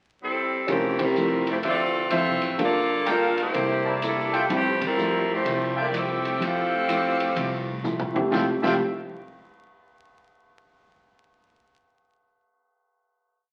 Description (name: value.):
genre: jazz, big band swing.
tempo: 126 BPM.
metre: 4/4.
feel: swing 66% on 8ths.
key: F major.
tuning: A4 = 441 Hz.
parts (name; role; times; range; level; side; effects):
edgy saxophone section; melody; 0.2-7.9 s; E3 to F5; -27 LUFS; equal; none.
fingerpicked steel-string acoustic guitar; accompaniment; 0.7-8.8 s; C3 to A4; -33 LUFS; equal; none.
warm baby grand piano; accompaniment; 0.7-5.2, 8.1-8.8 s; F2 to C5; -29 LUFS; equal; none.
upright bass; bass; 0.7-8.8 s; F1 to F2; -40 LUFS; equal; none.
vintage drum kit; drums; 0.7-8.7 s; crash cymbal, hi-hat, kick drum, ride cymbal, snare drum, toms; -36 LUFS; equal; none.
warm trumpet section; stabs; 1.6-8.7 s; D4 to A5; -31 LUFS; equal; none.
room: wet large studio reverb, RT60 1.2 s.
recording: very old 78 rpm record, vinyl crackle.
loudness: -24 LUFS.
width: mono.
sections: 0.0-0.7 pickup bar; 0.7-8.3 A section; 8.3-10.2 final chord.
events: band accent 0.9, 4.7; drum fill 7.8-8.3.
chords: 0.0 Am7/G; 0.7 Fmaj9; 1.6 Dm9; 2.6 Gm9; 3.5 C13; 4.5 Fmaj9.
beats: 0.20 | 0.68 1.16 1.64 2.12 | 2.60 3.07 3.55 4.03 | 4.50 4.98 5.46 5.93 | 6.41 6.89 7.37 7.84 | 8.32.